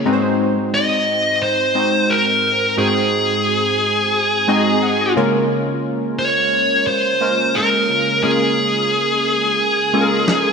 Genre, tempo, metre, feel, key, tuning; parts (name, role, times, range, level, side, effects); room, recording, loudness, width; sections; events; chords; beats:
1980s-style pop; 88 BPM; 4/4; swing 55% on 16ths; A4 = 440 Hz
crunchy overdriven guitar; accompaniment; 0.0-0.6 s; Ab3; -25 LUFS; left 9 dB; lush chorus
glassy digital keys; accompaniment; 0.0-10.5 s; Ab2 to Bb5; -19 LUFS; equal; chorus
high-gain lead guitar; melody; 0.7-10.5 s; Ab4 to Eb5; -16 LUFS; equal; distortion
electronic snare drum; drums; 10.3-10.5 s; -18 LUFS; left 1 dB; gated reverb
wet lush hall reverb, RT60 1.9 s; bright 1980s-style digital production; -14 LUFS; side -5 dB against mid
0.1-10.5 A section
synth keys fill 4.1-5.5; drum fill 10.3
0.1 Ab7; 5.2 Db6
| 0.05 0.73 1.42 2.10 | 2.78 3.46 4.14 4.82 | 5.51 6.19 6.87 7.55 | 8.23 8.91 9.60 10.28